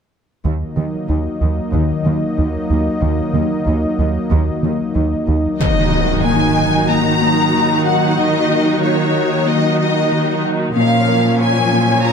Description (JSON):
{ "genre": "cinematic, hybrid orchestral and electronic film score", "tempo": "93 BPM", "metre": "4/4", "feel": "straight", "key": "Eb minor", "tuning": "A4 = 440 Hz", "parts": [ { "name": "warm analog pad", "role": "sustained chords", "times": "0.4-12.1 s", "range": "F3 to Eb5", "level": "-20 LUFS", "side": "left 1 dB", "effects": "chorus" }, { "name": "harp-like synth pluck", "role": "arpeggios", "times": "0.4-12.1 s", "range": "Eb3 to Bb4", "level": "-22 LUFS", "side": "left 5 dB", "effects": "chorus, ping-pong delay" }, { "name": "rubbery square bass", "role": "riff", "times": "0.4-5.5 s", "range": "Eb2 to Eb3", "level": "-19 LUFS", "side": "right 2 dB", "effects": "none" }, { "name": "rich studio cello section", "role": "bass", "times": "0.4-12.1 s", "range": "Eb2 to Eb3", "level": "-20 LUFS", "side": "right 4 dB", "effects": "none" }, { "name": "rich symphonic violin section", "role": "melody", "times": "5.6-12.1 s", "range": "Db5 to Bb5", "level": "-18 LUFS", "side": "left 3 dB", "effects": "none" }, { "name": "rich studio viola section", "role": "accompaniment", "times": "5.6-12.1 s", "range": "F3 to Gb4", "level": "-22 LUFS", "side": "left 1 dB", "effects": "none" }, { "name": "impact", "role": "sound effects", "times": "5.6-8.2 s", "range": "none", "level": "-21 LUFS", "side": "equal", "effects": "none" } ], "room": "moderate concert hall reverb, RT60 1.9 s", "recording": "none", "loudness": "-14 LUFS", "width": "side -6 dB against mid", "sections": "0.4-5.6 A section; 5.6-12.1 B section", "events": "impact 5.6-8.2", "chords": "0.4 Ebm; 10.8 Bbm" }